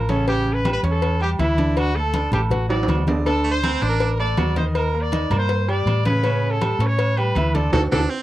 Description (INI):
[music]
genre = latin, salsa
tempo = 161 BPM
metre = 4/4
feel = straight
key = unclear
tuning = A4 = 440 Hz
[part]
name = warm trumpet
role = melody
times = 0.0-8.0 s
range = E4 to D5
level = -24 LUFS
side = equal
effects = none
[part]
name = bright upright piano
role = accompaniment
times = 0.0-8.0 s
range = C#3 to D6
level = -26 LUFS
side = right 2 dB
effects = none
[part]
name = hollow-body short-scale fingered electric bass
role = bass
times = 0.0-8.1 s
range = A1 to A2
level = -22 LUFS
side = equal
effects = none
[part]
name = congas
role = percussion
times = 0.1-8.0 s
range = none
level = -27 LUFS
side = left 2 dB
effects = none
[part]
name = cowbell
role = percussion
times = 0.1-8.0 s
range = none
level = -30 LUFS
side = left 6 dB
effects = none
[part]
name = agogo bells and timbales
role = percussion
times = 0.3-8.0 s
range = none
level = -29 LUFS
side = right 4 dB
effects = none
[part]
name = edgy baritone saxophone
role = second line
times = 3.4-4.1, 7.9-8.2 s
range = A3 to D4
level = -25 LUFS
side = right 4 dB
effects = none
[sound]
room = light reverb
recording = dry, close 1970s-style studio recording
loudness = -18 LUFS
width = side -15 dB against mid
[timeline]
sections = 0.0-8.2 A section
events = drum fill 2.7-3.3; band accent 7.7-8.2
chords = 0.3 A7; 1.8 D7; 4.8 Ebmaj7; 6.2 A7